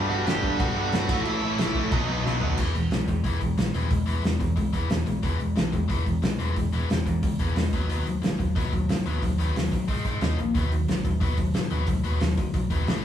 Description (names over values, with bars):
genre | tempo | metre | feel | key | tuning
punk rock | 181 BPM | 4/4 | straight | unclear | A4 = 438 Hz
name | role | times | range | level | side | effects
biting overdriven guitar | riff | 0.0-13.0 s | G2 to E4 | -28 LUFS | left 2 dB | none
distorted electric guitar | riff | 0.0-2.6 s | G2 to B3 | -29 LUFS | right 8 dB | overdrive
distorted electric guitar | riff | 0.0-2.6 s | G2 to B3 | -35 LUFS | right 1 dB | none
overdriven picked electric bass | bass | 0.0-13.0 s | E1 to D#3 | -28 LUFS | equal | none
dark smooth lead guitar | melody | 0.1-2.2 s | D#4 to G5 | -31 LUFS | equal | overdrive
loose indie drum kit | drums | 0.3-13.0 s | crash cymbal, hi-hat, kick drum, snare drum, toms | -27 LUFS | equal | none
room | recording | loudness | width
light reverb | band playing live in one room, small room ambience | -23 LUFS | side -10 dB against mid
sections
0.0-2.6 A section; 2.6-13.0 B section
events
drum fill 2.2-2.6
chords
0.0 G; 1.1 A; 1.9 B; 2.6 E; 7.7 B/D#; 7.9 B; 9.9 G#5; 10.2 D#5; 10.5 B